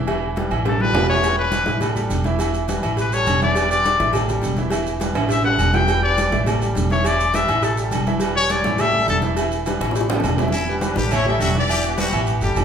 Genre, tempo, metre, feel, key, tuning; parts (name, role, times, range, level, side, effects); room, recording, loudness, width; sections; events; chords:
latin, salsa; 207 BPM; 4/4; straight; A4 = 441 Hz
bright grand piano; accompaniment; 0.0-12.6 s; E3 to E5; -26 LUFS; right 2 dB
upright bass; bass; 0.0-12.6 s; E1 to A1; -23 LUFS; equal
agogo bells and timbales; percussion; 0.1-12.6 s; -26 LUFS; right 3 dB
congas; percussion; 0.1-12.6 s; -27 LUFS; equal
cowbell and bongos; percussion; 0.1-10.6 s; -29 LUFS; left 2 dB
bright trumpet; melody; 0.7-9.2 s; A4 to G5; -20 LUFS; left 2 dB
maracas; percussion; 1.2-12.6 s; -37 LUFS; right 4 dB
trumpet with straight mute; second line; 10.5-12.6 s; E4 to G4; -26 LUFS; left 3 dB
clear trumpet section; melody; 10.8-12.6 s; B3 to E5; -24 LUFS; left 3 dB
wet large studio reverb, RT60 1.2 s; band playing live in one room; -17 LUFS; side -8 dB against mid
0.0-10.5 A section; 10.5-12.6 B section
trumpet solo 0.0-10.5; drum fill 0.7-1.2, 5.2-5.9, 9.8-10.5
0.1 Em; 0.7 A5; 1.2 Em; 1.8 A5; 2.4 Em; 3.0 A7; 3.6 Em7; 4.1 A5; 4.7 Em; 5.3 A5; 5.9 Em7; 6.5 A5; 7.0 Em7; 7.6 A5; 8.2 Em7; 8.8 A5; 9.4 Em; 10.0 A5; 10.5 Em7; 11.1 A5; 11.7 Em